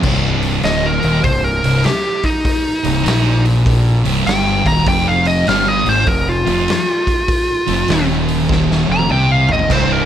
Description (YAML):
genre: stoner and doom metal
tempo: 99 BPM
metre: 4/4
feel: swing 65% on 8ths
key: C minor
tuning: A4 = 443 Hz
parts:
  - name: distorted electric guitar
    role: riff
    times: 0.0, 9.7-10.1 s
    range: C2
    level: -23 LUFS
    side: equal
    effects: distortion
  - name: thick fuzz guitar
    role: riff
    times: 0.0-10.1 s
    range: C2 to C3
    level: -19 LUFS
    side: left 7 dB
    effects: distortion
  - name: thick fuzz guitar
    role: riff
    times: 0.0-10.1 s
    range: C2 to C3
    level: -19 LUFS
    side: right 8 dB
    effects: distortion
  - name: fuzz fingered electric bass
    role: bass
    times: 0.0-10.1 s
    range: C1 to C2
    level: -20 LUFS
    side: equal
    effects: overdrive
  - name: raw garage drum kit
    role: drums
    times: 0.0-9.9 s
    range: crash cymbal, hi-hat, kick drum, snare drum, splash cymbal, toms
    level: -20 LUFS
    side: equal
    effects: none
  - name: fuzz lead guitar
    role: melody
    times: 0.6-10.1 s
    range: Eb4 to Bb5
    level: -17 LUFS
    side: equal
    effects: distortion, ping-pong delay
room: light reverb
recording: none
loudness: -12 LUFS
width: side -10 dB against mid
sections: 0.0-10.1 A section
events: lead electric guitar solo 0.0-10.1; drum fill 8.5-9.7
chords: 0.0 Cm; 4.9 F5